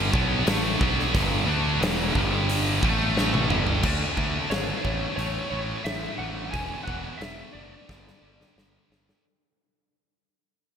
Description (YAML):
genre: hard rock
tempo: 89 BPM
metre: 4/4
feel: straight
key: unclear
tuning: A4 = 441 Hz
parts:
  - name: high-gain distorted guitar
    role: riff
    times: 0.0-9.2 s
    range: E2 to D4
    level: -30 LUFS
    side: left 10 dB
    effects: distortion
  - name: scooped high-gain guitar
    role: riff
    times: 0.0-9.2 s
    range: E2 to D4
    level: -30 LUFS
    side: right 10 dB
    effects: distortion
  - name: scooped high-gain guitar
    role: riff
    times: 0.0-3.8 s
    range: E2 to D4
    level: -30 LUFS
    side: right 1 dB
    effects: distortion
  - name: fuzz fingered electric bass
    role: bass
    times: 0.0-9.1 s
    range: E1 to D2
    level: -29 LUFS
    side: equal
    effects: overdrive
  - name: huge arena drum kit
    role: drums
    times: 0.1-9.2 s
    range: crash cymbal, hi-hat, kick drum, snare drum, toms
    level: -28 LUFS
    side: equal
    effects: gated reverb
  - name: lightly driven lead guitar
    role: melody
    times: 4.5-8.9 s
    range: C#5 to G#5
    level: -34 LUFS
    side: equal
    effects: ensemble chorus
room: light reverb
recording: bright 1980s-style digital production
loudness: -22 LUFS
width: side -8 dB against mid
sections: 0.0-3.8 A section; 3.8-9.2 B section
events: drum fill 3.2-3.8, 7.9-9.2; fade-out 3.8-9.2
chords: 0.1 E5; 2.1 G5; 2.8 A5; 3.5 G5; 3.8 D5; 4.8 A5; 6.5 E5; 7.9 G5